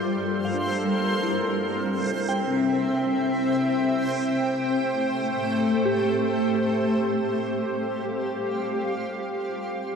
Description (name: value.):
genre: ambient.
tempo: free time.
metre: none.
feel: none.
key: G dorian.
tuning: A4 = 443 Hz.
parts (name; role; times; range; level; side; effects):
granular cloud pad; sustained chords; 0.0-10.0 s; G3 to G5; -24 LUFS; left 1 dB; built-in reverb.
soft synth bell; arpeggios; 0.0-8.7 s; D4 to E6; -32 LUFS; right 1 dB; chorus, ping-pong delay.
backwards swelling texture; texture; 0.0-9.3 s; C5 to C6; -33 LUFS; right 2 dB; built-in reverb.
room: wet cathedral reverb, RT60 7.3 s.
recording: dark, warm production.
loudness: -22 LUFS.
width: side -6 dB against mid.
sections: 0.0-9.3 A section.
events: fade-in on synth bell 0.0-9.3; fade-out on synth texture 0.0-9.3.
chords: 0.0 Gmadd9; 1.0 C; 3.7 Am7; 6.5 Fsus2; 9.3 G7(no3).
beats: free time.